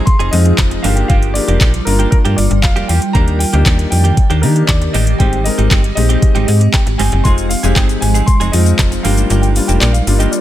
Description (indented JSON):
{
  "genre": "dance-pop",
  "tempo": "117 BPM",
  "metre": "4/4",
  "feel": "straight",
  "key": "unclear",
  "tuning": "A4 = 440 Hz",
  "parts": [
    { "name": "dark baby grand piano", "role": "melody", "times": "0.0-10.4 s", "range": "Bb4 to C6", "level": "-23 LUFS", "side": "equal", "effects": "none" },
    { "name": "granular cloud pad", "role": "sustained chords", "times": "0.0-10.4 s", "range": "Eb3 to D5", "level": "-21 LUFS", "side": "right 2 dB", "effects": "built-in reverb, sidechain pumping" },
    { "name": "direct-recorded clean electric guitar", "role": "riff", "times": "0.0-10.4 s", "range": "Eb3 to Ab4", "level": "-23 LUFS", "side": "right 6 dB", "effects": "wide subtle chorus" },
    { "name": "smooth R&B drum kit", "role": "drums", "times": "0.1-10.4 s", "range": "handclaps, hi-hat, kick drum, shaker, snare drum", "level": "-14 LUFS", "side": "equal", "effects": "none" },
    { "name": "slap-like FM bass", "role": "bass", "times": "0.2-10.3 s", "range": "F1 to Eb3", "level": "-14 LUFS", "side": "equal", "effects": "sidechain pumping" },
    { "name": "warm concert grand piano", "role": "accompaniment", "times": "0.3-10.4 s", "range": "G3 to Bb4", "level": "-20 LUFS", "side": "left 5 dB", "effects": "sidechain pumping" },
    { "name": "group handclap", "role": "percussion", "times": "0.6-9.9 s", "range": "none", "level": "-30 LUFS", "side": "left 5 dB", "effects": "none" }
  ],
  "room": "digital ambience",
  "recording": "none",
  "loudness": "-10 LUFS",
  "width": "side -13 dB against mid",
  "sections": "0.0-10.4 A section",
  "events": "kick muted 9.3-10.4",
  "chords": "0.0 Fm7; 0.8 Gm7; 3.1 Ebmaj7; 5.2 Abmaj7; 7.3 Fm7; 9.0 Gm7",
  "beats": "0.07 0.58 | 1.10 1.61 2.12 2.64 | 3.15 3.66 4.17 4.69 | 5.20 5.71 6.23 6.74 | 7.25 7.76 8.28 8.79 | 9.30 9.81 10.33"
}